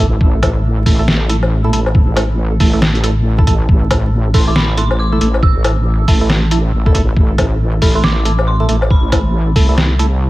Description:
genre	deep dubstep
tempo	138 BPM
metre	4/4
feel	swing 61% on 16ths, half-time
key	A minor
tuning	A4 = 440 Hz
part	percussive organ stab	stabs	0.0-10.1 s	A3 to A4	-21 LUFS	right 2 dB	chorus, phaser, cassette tape, dub echo
part	wobble bass	bass	0.0-10.3 s	A1 to C2	-14 LUFS	equal	chorus
part	electronic kick drum	drums	0.2-9.7 s	none	-13 LUFS	equal	none
part	trip hop sampler-style drum kit	drums	0.4-10.1 s	hi-hat, snare drum, woodblock	-18 LUFS	left 1 dB	none
part	dark detuned synth bell	melody	4.3-10.2 s	B5 to E6	-24 LUFS	right 1 dB	chorus, phaser, vintage 12-bit sampler grit, dub echo
room	little or no reverb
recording	vinyl crackle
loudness	-11 LUFS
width	side -18 dB against mid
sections	0.0-10.3 A section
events	none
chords	0.0 A5

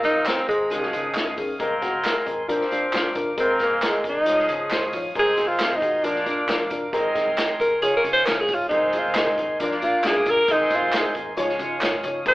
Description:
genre	uptempo 1960s-style soul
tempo	135 BPM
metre	4/4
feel	straight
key	unclear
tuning	A4 = 440 Hz
part	warm tenor saxophone	melody	0.0-12.3 s	Ab3 to C5	-21 LUFS	equal	none
part	clear horn section	second line	0.0-12.3 s	Eb3 to Eb5	-27 LUFS	right 1 dB	none
part	dark upright piano	accompaniment	0.0-12.3 s	Eb3 to Db5	-28 LUFS	left 2 dB	none
part	tonewheel organ	sustained chords	0.0-12.3 s	Ab4 to Eb6	-31 LUFS	equal	slow rotary speaker
part	vintage muted fingered electric bass	bass	0.0-12.3 s	Gb1 to Db3	-45 LUFS	equal	none
part	natural country drum kit	drums	0.0-12.3 s	hi-hat, kick drum, snare drum	-29 LUFS	equal	none
part	tambourine and handclaps	percussion	0.0-12.3 s	none	-32 LUFS	right 1 dB	none
room	wet large studio reverb, RT60 1.3 s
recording	band playing live in one room, telephone sound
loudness	-20 LUFS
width	side -18 dB against mid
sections	0.0-12.3 A section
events	tenor saxophone solo 0.0-12.3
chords	0.0 Abadd9; 0.7 Dbadd9; 1.6 Abadd9/C; 2.5 Bb; 3.4 Abadd9; 4.3 Dbadd9; 5.2 Abadd9/C; 6.0 Bb; 6.9 Abadd9; 7.8 Dbadd9; 8.7 Abadd9/C; 9.6 Bb; 10.5 Abadd9; 11.4 Dbadd9

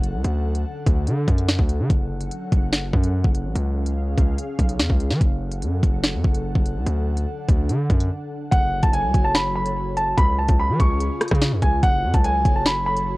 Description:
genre	hip hop, drill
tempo	145 BPM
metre	4/4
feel	half-time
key	F# harmonic minor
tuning	A4 = 439 Hz
part	airy breathy pad	sustained chords	0.0-13.2 s	C#3 to F#5	-30 LUFS	equal	chorus, cassette tape
part	hard-hitting 808-style bass	bass	0.0-13.2 s	F#1 to E#3	-23 LUFS	equal	tube saturation
part	drill drum kit	drums	0.0-13.1 s	hi-hat, kick drum, rim click, snare drum	-19 LUFS	equal	cassette tape
part	dark concert grand piano	melody	8.5-13.2 s	F#5 to C#6	-22 LUFS	right 1 dB	none
room	little or no reverb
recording	home recording on cassette, faint mains hum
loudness	-18 LUFS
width	side -20 dB against mid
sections	0.0-8.5 A section; 8.5-13.2 B section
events	break 8.1-8.5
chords	0.2 D; 1.9 F#m; 3.6 C#; 5.2 F#m; 6.9 D; 8.5 F#m; 10.2 C#; 11.8 F#m

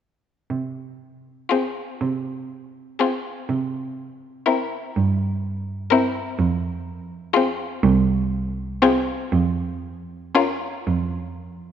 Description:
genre	classical, slow romantic movement for string quartet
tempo	41 BPM (dotted quarters)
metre	6/8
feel	uneven beats, rubato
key	F minor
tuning	A4 = 439 Hz
part	rich cello	bass	0.5-11.7 s	C2 to C3	-22 LUFS	right 4 dB	none
part	clear violin	melody	1.5-10.7 s	Ab4 to Bb4	-26 LUFS	left 10 dB	none
part	clear violin	second line	1.5-10.7 s	E4 to F4	-26 LUFS	left 6 dB	none
part	rich viola	accompaniment	1.5-10.7 s	C4 to Db4	-23 LUFS	left 1 dB	none
room	moderate concert hall reverb, RT60 2.2 s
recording	nothing above 8.0 kHz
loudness	-21 LUFS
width	side -9 dB against mid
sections	0.5-11.7 A section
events	none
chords	0.5 Fm/C; 3.5 C7; 6.4 Fm; 9.3 Bbm/F (rootless)

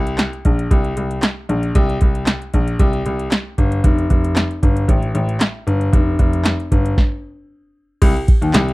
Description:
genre	early-eighties boogie funk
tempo	115 BPM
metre	4/4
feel	straight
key	C dorian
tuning	A4 = 440 Hz
part	clear grand piano	bass	0.0-8.7 s	F1 to Eb2	-18 LUFS	left 1 dB	none
part	electro analog drum machine	drums	0.1-8.7 s	crash cymbal, handclaps, hi-hat, kick drum, snare drum	-15 LUFS	equal	none
room	little or no reverb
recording	dry, close 1970s-style studio recording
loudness	-15 LUFS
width	side -21 dB against mid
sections	0.0-8.0 A section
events	stop 7.0-8.0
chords	none

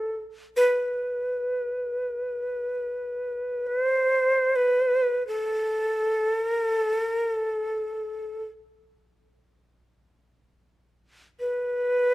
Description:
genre	japanese traditional, Japanese chamber music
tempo	free time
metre	none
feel	none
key	A hirajoshi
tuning	A4 = 440 Hz
part	breathy bright shakuhachi	solo	0.0-12.1 s	A4 to C5	-23 LUFS	equal	none
room	little or no reverb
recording	close, detailed microphones, faint mains hum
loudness	-24 LUFS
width	side -17 dB against mid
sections	0.0-12.1 A section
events	none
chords	none

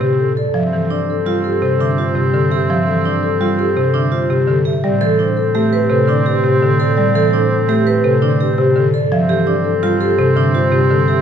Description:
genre	classical, minimalist pattern music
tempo	168 BPM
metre	6/4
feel	straight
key	unclear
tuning	A4 = 440 Hz
part	vibraphone with soft mallets	melody	0.0-11.2 s	G4 to F5	-18 LUFS	left 8 dB	none
part	warm oboe	second line	0.0-11.2 s	C4	-23 LUFS	right 4 dB	none
part	buzzing marimba with medium mallets	accompaniment	0.0-11.1 s	C3 to A3	-17 LUFS	equal	none
part	vibraphone with medium hard mallets	arpeggios	0.0-11.2 s	D4 to B4	-21 LUFS	right 8 dB	none
part	rich double bass	bass	0.0-11.2 s	G2 to A2	-21 LUFS	right 4 dB	none
room	moderate large studio reverb, RT60 1.2 s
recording	dark, warm production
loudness	-13 LUFS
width	side -8 dB against mid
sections	0.0-11.2 A section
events	none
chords	0.0 Am7; 0.6 G9sus4; 4.8 Am7; 9.1 G9sus4

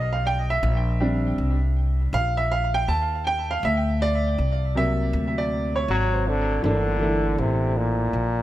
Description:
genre	hip hop, jazz-hop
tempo	80 BPM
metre	4/4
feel	swing 62% on 16ths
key	G dorian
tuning	A4 = 440 Hz
part	warm grand piano	accompaniment	0.0-8.1 s	C3 to A5	-25 LUFS	right 2 dB	tape echo
part	upright bass	bass	0.0-8.4 s	G1 to Eb2	-24 LUFS	equal	none
part	bright trombone	melody	5.9-8.4 s	Bb2 to F#3	-24 LUFS	equal	tape echo
room	light reverb, small room ambience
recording	echo-heavy mix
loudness	-21 LUFS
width	side -14 dB against mid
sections	0.0-6.6 A section; 6.6-8.4 B section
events	grand piano solo 0.0-6.6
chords	0.0 F9; 0.6 Bb6; 3.6 D7b13; 6.6 Gm69

